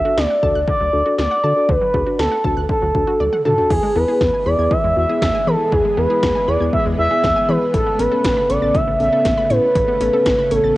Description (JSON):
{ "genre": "synth-pop", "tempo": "119 BPM", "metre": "4/4", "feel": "straight", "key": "unclear", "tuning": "A4 = 439 Hz", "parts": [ { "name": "expressive synth lead", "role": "melody", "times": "0.0-10.8 s", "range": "G#4 to E5", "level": "-16 LUFS", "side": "right 1 dB", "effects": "chorus, cassette tape" }, { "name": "mellow tine electric piano", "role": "accompaniment", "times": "0.1-10.8 s", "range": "B3 to B4", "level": "-24 LUFS", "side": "left 3 dB", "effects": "none" }, { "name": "wide unison pluck", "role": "arpeggios", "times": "0.1-10.7 s", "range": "D3 to A6", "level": "-31 LUFS", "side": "left 1 dB", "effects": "tape echo" }, { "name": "round analog bass", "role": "bass", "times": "0.2-10.7 s", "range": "A1 to E3", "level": "-23 LUFS", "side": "equal", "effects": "none" }, { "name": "80s electronic pad drums", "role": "drums", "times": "0.2-10.6 s", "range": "crash cymbal, hi-hat, kick drum, snare drum, toms", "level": "-23 LUFS", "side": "equal", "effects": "gated reverb on snare and toms, cassette tape" }, { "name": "string machine, full ensemble", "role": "sustained chords", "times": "3.7-10.8 s", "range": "C#3 to C#4", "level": "-26 LUFS", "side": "left 1 dB", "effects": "ensemble chorus" } ], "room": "light reverb, digital ambience", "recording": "home recording on cassette", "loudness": "-14 LUFS", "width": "side -17 dB against mid", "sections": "0.0-3.7 A section; 3.7-10.8 B section", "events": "drum fill 3.2-3.7", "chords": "0.0 D; 3.7 E; 7.7 Aadd9", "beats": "0.18 0.68 1.18 | 1.69 2.19 2.70 3.20 | 3.71 4.21 4.71 5.22 | 5.72 6.23 6.73 7.23 | 7.74 8.24 8.75 9.25 | 9.76 10.26 10.76" }